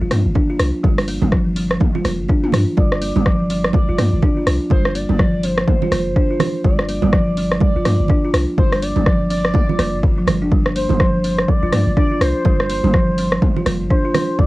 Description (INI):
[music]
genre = afro house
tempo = 124 BPM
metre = 4/4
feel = swing 60% on 16ths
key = G minor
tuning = A4 = 441 Hz
[part]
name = buzzing kalimba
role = arpeggios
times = 0.0-14.5 s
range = D3 to F4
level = -21 LUFS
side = equal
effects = sidechain pumping, cassette tape, tape echo
[part]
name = warm 808-style bass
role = bass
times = 0.0-14.5 s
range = F1 to G2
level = -21 LUFS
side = equal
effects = sidechain pumping
[part]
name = deep house drum kit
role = drums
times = 0.1-14.3 s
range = hi-hat, rim click, toms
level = -22 LUFS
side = equal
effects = cassette tape
[part]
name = congas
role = percussion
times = 0.1-14.5 s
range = none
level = -24 LUFS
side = right 7 dB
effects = none
[part]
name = electronic kick drum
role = drums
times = 0.4-14.5 s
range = none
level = -16 LUFS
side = equal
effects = cassette tape
[part]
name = expressive synth lead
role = melody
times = 2.8-14.5 s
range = C5 to D5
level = -24 LUFS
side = equal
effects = lush chorus, cassette tape, tape echo
[sound]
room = light reverb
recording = home recording on cassette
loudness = -14 LUFS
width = side -19 dB against mid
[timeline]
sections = 0.0-14.5 A section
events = none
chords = 0.0 Gm7